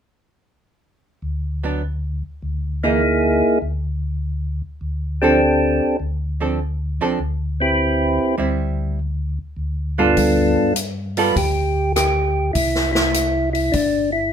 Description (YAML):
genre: soul jazz organ trio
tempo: 101 BPM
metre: 4/4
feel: swing 68% on 8ths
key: G major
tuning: A4 = 440 Hz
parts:
  - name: mellow tonewheel organ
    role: bass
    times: 1.2-14.3 s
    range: G1 to G2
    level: -23 LUFS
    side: left 1 dB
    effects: chorus vibrato, slow rotary speaker
  - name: archtop guitar, miked and amplified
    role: accompaniment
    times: 1.6-11.4 s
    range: E3 to A4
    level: -22 LUFS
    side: right 4 dB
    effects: none
  - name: percussive tonewheel organ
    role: melody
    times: 2.8-14.3 s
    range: G2 to B4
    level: -17 LUFS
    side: equal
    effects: slow rotary speaker
  - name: swinging big-band drum kit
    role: drums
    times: 10.2-13.9 s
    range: hi-hat, kick drum, rim click, snare drum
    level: -24 LUFS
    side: left 1 dB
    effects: none
room: moderate club reverb, RT60 0.5 s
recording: minimal, uncompressed stereo recording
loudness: -18 LUFS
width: side -8 dB against mid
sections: 0.6-10.2 A section; 10.2-14.3 B section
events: none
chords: 0.6 N.C.; 3.0 Dsus2; 7.8 D13sus4; 9.0 G9; 12.6 C